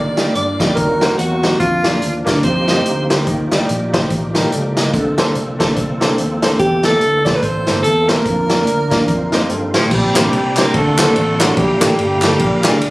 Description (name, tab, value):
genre	uptempo gospel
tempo	144 BPM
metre	4/4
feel	swing 59% on 8ths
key	Bb major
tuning	A4 = 438 Hz
part	bright alto saxophone	melody	0.0-3.1, 6.6-9.3 s	F4 to D5	-17 LUFS	right 1 dB	none
part	clear baby grand piano	accompaniment	0.0-12.9 s	Bb2 to Eb5	-19 LUFS	equal	none
part	bright tonewheel organ	sustained chords	0.0-12.9 s	Eb3 to D6	-24 LUFS	right 1 dB	fast rotary speaker, chorus vibrato
part	fingered electric bass	bass	0.0-12.9 s	G1 to A2	-21 LUFS	equal	none
part	swinging big-band drum kit	drums	0.2-12.9 s	crash cymbal, hi-hat, kick drum, ride cymbal, snare drum	-18 LUFS	equal	none
part	mellow horn section	melody	9.7-12.8 s	F3 to Bb4	-18 LUFS	equal	none
part	group handclap	percussion	10.2-12.7 s	none	-21 LUFS	left 1 dB	none
room	light reverb, small room reverb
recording	recorded on a phone in the room, studio ambience, compression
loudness	-13 LUFS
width	side -20 dB against mid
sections	0.0-9.9 A section; 9.9-12.9 B section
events	none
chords	0.0 Ebmaj9; 0.8 Ebm6; 1.6 Bb/F; 2.4 F9sus4; 3.3 Ebmaj9; 4.9 Bbmaj9; 6.6 C13; 8.3 Bb/F; 9.1 F7sus4; 9.9 Bb69; 10.7 D7b13; 11.6 Gm9; 12.4 Bb7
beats	0.35 0.77 1.19 | 1.60 2.02 2.44 2.85 | 3.27 3.68 4.10 4.52 | 4.93 5.35 5.76 6.18 | 6.59 7.01 7.42 7.84 | 8.26 8.67 9.09 9.50 | 9.92 10.33 10.74 11.16 | 11.57 11.99 12.40 12.81